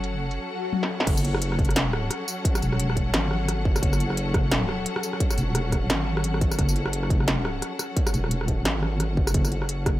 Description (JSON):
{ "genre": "half-time drum and bass", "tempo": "174 BPM", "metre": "4/4", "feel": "swing 58% on 16ths, half-time", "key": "F# minor", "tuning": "A4 = 440 Hz", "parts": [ { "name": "clear studio string section", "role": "sustained chords", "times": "0.0-10.0 s", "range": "F#3 to F#5", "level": "-31 LUFS", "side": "left 2 dB", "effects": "sidechain pumping" }, { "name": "deep soft wobble bass", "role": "bass", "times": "0.0-10.0 s", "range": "E1 to G#1", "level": "-26 LUFS", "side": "equal", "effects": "chorus" }, { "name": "industrial drum kit", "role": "drums", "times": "0.0-9.9 s", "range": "crash cymbal, hi-hat, rim click, snare drum, tambourine, toms", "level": "-27 LUFS", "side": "equal", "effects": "low-pass filter on hats, low-pass filter on toms, low-pass filter on snare, low-pass filter on cymbals, low-pass filter on perc, low-pass filter on room" }, { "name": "swell", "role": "sound effects", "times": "0.5-1.1 s", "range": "none", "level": "-35 LUFS", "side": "left 6 dB", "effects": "none" }, { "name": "electronic kick drum", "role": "drums", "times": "1.1-9.9 s", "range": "none", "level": "-25 LUFS", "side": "equal", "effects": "distortion" } ], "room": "light reverb", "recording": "none", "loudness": "-22 LUFS", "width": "side -15 dB against mid", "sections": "0.0-1.1 A section; 1.1-10.0 B section", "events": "filter sweep 0.0-1.1; swell 0.5-1.1; drum fill 0.7-1.1; drop 1.1-10.0", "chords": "0.0 F#m" }